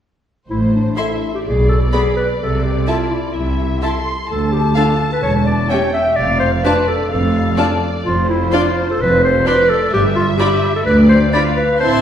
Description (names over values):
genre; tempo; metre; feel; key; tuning
quick classical-period movement for symphony orchestra; 127 BPM; 4/4; straight; unclear; A4 = 440 Hz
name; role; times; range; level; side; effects
dark studio violin section; melody; 0.5-12.0 s; C5 to C6; -25 LUFS; left 3 dB; none
clear clarinet; second line; 0.5-11.9 s; D4 to E5; -17 LUFS; left 1 dB; none
dark studio cello section; bass; 0.5-12.0 s; D2 to C3; -19 LUFS; right 1 dB; none
rich studio double bass section; bass; 0.5-12.0 s; E1 to D2; -20 LUFS; right 1 dB; none
warm studio violin section; second line; 1.0-12.0 s; D5 to C6; -24 LUFS; left 2 dB; none
warm studio viola section; accompaniment; 1.0-12.0 s; B3 to A4; -24 LUFS; right 1 dB; none
room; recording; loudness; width
wet recital hall reverb, RT60 1.6 s; recorded in a church or concert hall; -13 LUFS; side -9 dB against mid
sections
0.5-12.0 A section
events
none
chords
0.5 Am; 1.5 G#dim/B; 2.4 Am/C; 4.3 D5; 5.2 C#dim/E; 6.2 Dm/F; 9.9 G7